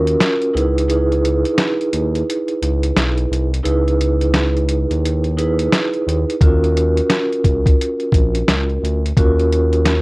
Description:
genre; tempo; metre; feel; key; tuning
hip hop, boom-bap hip-hop; 87 BPM; 4/4; swing 62% on 16ths; unclear; A4 = 440 Hz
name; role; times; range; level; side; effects
vibraphone with soft mallets; accompaniment; 0.0-10.0 s; Db4 to Cb5; -18 LUFS; right 1 dB; cassette tape, high-pass filter, low-pass filter
smooth gliding synth bass; bass; 0.0-10.0 s; Bb1 to Eb2; -18 LUFS; equal; none
boom bap sampler-style drum kit; drums; 0.1-10.0 s; hi-hat, kick drum, snare drum; -17 LUFS; equal; none
room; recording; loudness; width
light reverb; worn, warbling old tape, cassette tape, warbly pitch drift; -14 LUFS; side -23 dB against mid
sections
0.0-10.0 A section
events
break 0.0-6.4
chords
0.0 Ebm9; 0.5 Dbm9; 6.4 Ebm9

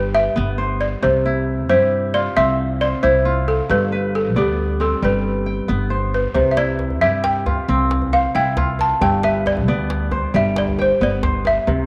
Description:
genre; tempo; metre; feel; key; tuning
west african traditional, West African string and xylophone music; 90 BPM (dotted quarters); 12/8; straight; unclear; A4 = 442 Hz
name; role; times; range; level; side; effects
balafon; melody; 0.0-11.9 s; G4 to A5; -22 LUFS; equal; none
kora; arpeggios; 0.0-11.9 s; G2 to G5; -24 LUFS; equal; none
upright bass; bass; 0.0-11.9 s; G1 to G2; -25 LUFS; equal; none
djembe; percussion; 6.3-11.8 s; none; -28 LUFS; equal; none
room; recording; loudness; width
wet spring reverb, RT60 2.7 s; none; -18 LUFS; mono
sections
0.0-11.9 A section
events
balafon solo 0.0-11.9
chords
0.0 G; 1.0 C; 3.7 G; 6.4 C; 9.0 G

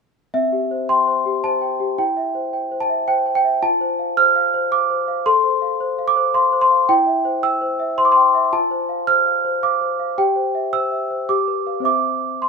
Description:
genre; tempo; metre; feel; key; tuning
classical, lullaby for celesta; 110 BPM; 3/4; straight; C major; A4 = 440 Hz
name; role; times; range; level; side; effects
celesta; solo; 0.3-12.5 s; C4 to F6; -16 LUFS; equal; none
room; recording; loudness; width
light reverb; minimal, uncompressed stereo recording; -16 LUFS; side -4 dB against mid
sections
0.3-12.5 A section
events
none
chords
0.3 C; 2.0 C/E; 3.6 F; 5.3 F/A; 6.9 C/E; 8.5 F; 10.2 C/G; 11.3 G7; 11.9 C

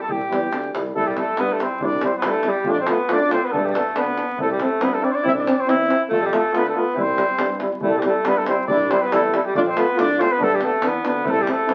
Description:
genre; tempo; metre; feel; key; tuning
balkan folk, Balkan brass band; 140 BPM; 2/4; straight; C major; A4 = 439 Hz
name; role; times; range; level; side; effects
mellow trumpet; melody; 0.0-11.7 s; G4 to E5; -25 LUFS; equal; none
clear alto saxophone; second line; 0.0-11.7 s; G3 to A4; -28 LUFS; equal; none
warm tuba; bass; 0.1-11.7 s; C2 to G2; -30 LUFS; equal; none
davul; percussion; 0.1-11.7 s; none; -31 LUFS; equal; none
clear trombone; accompaniment; 0.3-11.7 s; D4 to F4; -30 LUFS; equal; none
warm euphonium; accompaniment; 0.3-11.7 s; G3 to C4; -26 LUFS; equal; none
room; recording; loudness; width
wet studio reverb, RT60 0.6 s; very old 78 rpm record, vinyl crackle; -20 LUFS; mono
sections
0.9-7.8 A section; 7.8-11.7 A section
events
none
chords
0.0 C; 2.7 F; 3.5 G; 4.4 C; 6.1 F; 7.0 C; 9.5 F; 10.4 G

